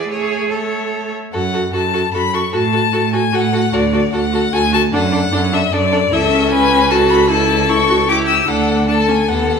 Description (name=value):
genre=quick classical-period movement for string quartet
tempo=150 BPM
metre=3/4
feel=straight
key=F# minor, A major from 6.1 s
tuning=A4 = 439 Hz
part: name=rich violin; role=second line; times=0.0-9.6 s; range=G4 to D5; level=-20 LUFS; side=left 4 dB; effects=none
part: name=rich viola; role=accompaniment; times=0.0-9.6 s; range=A3 to F#4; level=-20 LUFS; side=right 2 dB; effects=none
part: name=rich cello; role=bass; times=0.0-9.6 s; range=C#2 to A4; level=-19 LUFS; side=right 4 dB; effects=none
part: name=warm violin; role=melody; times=0.1-9.6 s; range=D5 to E6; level=-18 LUFS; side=left 7 dB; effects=none
room=wet recital hall reverb, RT60 1.4 s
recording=minimal, uncompressed stereo recording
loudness=-13 LUFS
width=side -6 dB against mid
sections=0.0-1.3 A section; 1.3-9.6 B section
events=none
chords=0.1 A; 1.3 F#m; 2.5 F#m/A; 3.7 D; 4.9 D/F#; 6.1 A/C#; 7.3 A7/C#; 8.5 D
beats=| 0.10 0.51 0.92 | 1.33 1.73 2.13 | 2.54 2.94 3.34 | 3.74 4.14 4.54 | 4.94 5.33 5.73 | 6.12 6.52 6.91 | 7.30 7.70 8.09 | 8.48 8.88 9.29